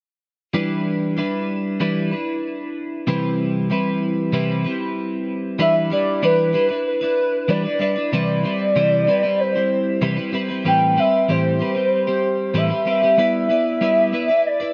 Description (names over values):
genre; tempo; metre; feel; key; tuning
indie pop; 95 BPM; 4/4; straight; E minor; A4 = 440 Hz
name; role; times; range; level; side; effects
twelve-string electric guitar; accompaniment; 0.5-14.7 s; A2 to D5; -23 LUFS; equal; lush chorus, warbly pitch drift
warbly nostalgic lead; melody; 5.6-14.7 s; B4 to G5; -21 LUFS; equal; lush chorus
room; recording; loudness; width
moderate plate reverb, RT60 2.9 s; none; -20 LUFS; mono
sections
0.5-5.6 A section; 5.6-14.7 B section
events
none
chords
0.5 Em7; 3.1 Cmaj7; 5.6 Em7; 8.1 Cmaj7; 10.7 Am9; 13.2 G6